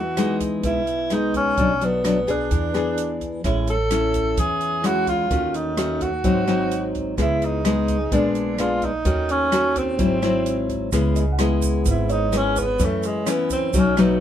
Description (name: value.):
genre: bossa nova.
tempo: 128 BPM.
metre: 4/4.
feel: straight.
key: C# minor.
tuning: A4 = 442 Hz.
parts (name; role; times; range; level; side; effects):
breathy tenor saxophone; melody; 0.0-14.2 s; G#3 to A4; -23 LUFS; right 1 dB; none.
nylon-string guitar; accompaniment; 0.0-14.2 s; F#2 to G#4; -22 LUFS; left 2 dB; none.
upright bass; bass; 0.0-14.2 s; G#1 to F#2; -27 LUFS; right 1 dB; none.
open jazz drum kit; drums; 0.2-14.1 s; hi-hat, kick drum, rim click; -28 LUFS; right 1 dB; none.
tube shaker; percussion; 10.9-14.2 s; none; -34 LUFS; right 7 dB; none.
warm baby grand piano; accompaniment; 11.2-13.0 s; C#5 to F#5; -31 LUFS; right 5 dB; none.
room: light reverb.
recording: minimal, uncompressed stereo recording.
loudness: -19 LUFS.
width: side -10 dB against mid.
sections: 0.0-10.9 A section; 10.9-14.2 B section.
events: tenor saxophone solo 10.9-14.2.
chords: 0.0 Emaj7; 1.6 Bm7; 2.5 E7; 3.4 Amaj7; 5.3 D#m7b5; 6.2 G#7; 7.2 C#m7; 8.1 A#7b9; 9.1 D#m7b5; 10.0 G#aug7; 10.9 C#m7; 12.8 F#m7.